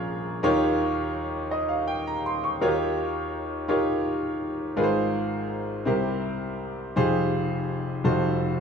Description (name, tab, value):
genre	gospel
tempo	55 BPM (dotted quarters)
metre	6/8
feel	straight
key	unclear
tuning	A4 = 441 Hz
part	bright grand piano	solo	0.0-8.6 s	F1 to Db6	-24 LUFS	equal	none
room	wet stone room reverb, RT60 1.2 s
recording	band playing live in one room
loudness	-24 LUFS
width	side -6 dB against mid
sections	0.0-2.6 A section; 2.6-4.8 B section; 4.8-8.6 C section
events	none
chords	0.4 Eb9; 4.8 Ab69; 5.9 C7; 7.0 Fm9; 8.0 F7b9